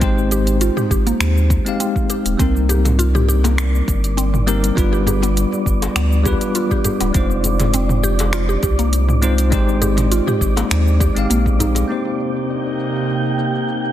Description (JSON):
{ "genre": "organic downtempo", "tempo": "101 BPM", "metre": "4/4", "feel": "swing 53% on 16ths", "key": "C minor", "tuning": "A4 = 439 Hz", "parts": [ { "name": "bell-like tine electric piano", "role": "accompaniment", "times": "0.0-13.9 s", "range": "G3 to F5", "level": "-21 LUFS", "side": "left 2 dB", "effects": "fast stereo tremolo, sidechain pumping, tape echo" }, { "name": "mallet-like synth pluck", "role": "arpeggios", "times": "0.0-11.7 s", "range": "Bb3 to G4", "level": "-24 LUFS", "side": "right 1 dB", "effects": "chorus, phaser, tape echo" }, { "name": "warm sub bass", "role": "bass", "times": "0.0-11.8 s", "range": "D1 to Eb2", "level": "-17 LUFS", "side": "equal", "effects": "sidechain pumping" }, { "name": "deep house drum kit", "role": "drums", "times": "0.0-13.9 s", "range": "finger snaps, hi-hat, shaker, toms", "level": "-23 LUFS", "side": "right 1 dB", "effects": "low-pass filter on perc, low-pass filter on hats, soft clipping on snare, low-pass filter on snare, low-pass filter on toms" }, { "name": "electronic kick drum", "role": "drums", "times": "0.0-11.6 s", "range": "none", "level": "-20 LUFS", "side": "equal", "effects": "none" }, { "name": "wind-like tuned noise texture", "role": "texture", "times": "3.1-13.9 s", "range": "D4 to G5", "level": "-27 LUFS", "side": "right 2 dB", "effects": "built-in reverb" }, { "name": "djembe", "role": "percussion", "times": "2.7-11.9 s", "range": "none", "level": "-28 LUFS", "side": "left 2 dB", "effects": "none" }, { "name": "airy breathy pad", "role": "sustained chords", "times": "11.9-13.9 s", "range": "C3 to Eb4", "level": "-22 LUFS", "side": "right 2 dB", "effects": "chorus, sidechain pumping" } ], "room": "light reverb, digital ambience", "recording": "dense, heavily limited modern master", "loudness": "-15 LUFS", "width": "side -12 dB against mid", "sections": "0.0-11.9 A section; 11.9-13.9 B section", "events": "none", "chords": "0.0 Abmaj7; 2.4 Cm7; 4.8 G7; 7.1 Fm7; 9.5 Abmaj7; 11.9 Cm7" }